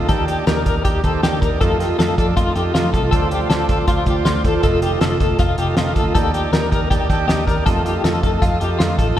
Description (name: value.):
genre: jangly indie pop.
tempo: 159 BPM.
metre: 4/4.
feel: straight.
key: F mixolydian.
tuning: A4 = 440 Hz.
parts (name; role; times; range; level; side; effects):
combo organ; accompaniment; 0.0-9.2 s; Eb4 to Bb5; -24 LUFS; right 3 dB; none.
fingerpicked twelve-string acoustic guitar; accompaniment; 0.0-9.2 s; F2 to G4; -25 LUFS; right 3 dB; none.
twelve-string electric guitar; arpeggios; 0.0-9.2 s; F4 to Bb4; -22 LUFS; left 4 dB; tremolo.
vintage muted picked electric bass; bass; 0.0-9.1 s; F1 to F2; -22 LUFS; equal; none.
cloth-damped thuddy drum kit; drums; 0.1-9.1 s; hi-hat, kick drum, snare drum; -20 LUFS; equal; none.
room: wet church reverb, RT60 2.9 s.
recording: recorded in a church or concert hall.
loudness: -15 LUFS.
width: side -11 dB against mid.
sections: 0.0-9.2 A section.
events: transistor combo organ fill 6.5-7.7.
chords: 0.1 Ebmaj7; 1.6 F7; 3.1 Dm7; 4.6 F7; 6.2 Ebmaj7; 7.7 F7.